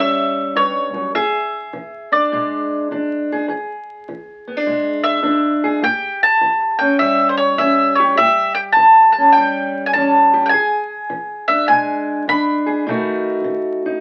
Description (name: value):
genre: acoustic country blues, solo or duo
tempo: 103 BPM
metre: 4/4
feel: swing 66% on 8ths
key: unclear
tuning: A4 = 444 Hz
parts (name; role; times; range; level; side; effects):
- mandolin; melody; 0.0-14.0 s; C5 to B5; -17 LUFS; equal; none
- fingerpicked steel-string acoustic guitar; accompaniment; 0.0-14.0 s; E2 to G#4; -23 LUFS; equal; none
room: moderate small room reverb, RT60 0.6 s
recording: very old 78 rpm record, vinyl crackle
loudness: -16 LUFS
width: mono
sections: 0.0-14.0 A section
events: none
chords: 0.0 A7 (rootless); 1.2 E7; 5.8 A7; 10.5 E7; 12.9 B7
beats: 0.57 | 1.16 1.74 2.33 2.91 | 3.50 4.08 4.67 5.25 | 5.84 6.42 7.01 7.59 | 8.18 8.76 9.35 9.93 | 10.52 11.10 11.69 12.27 | 12.85 13.44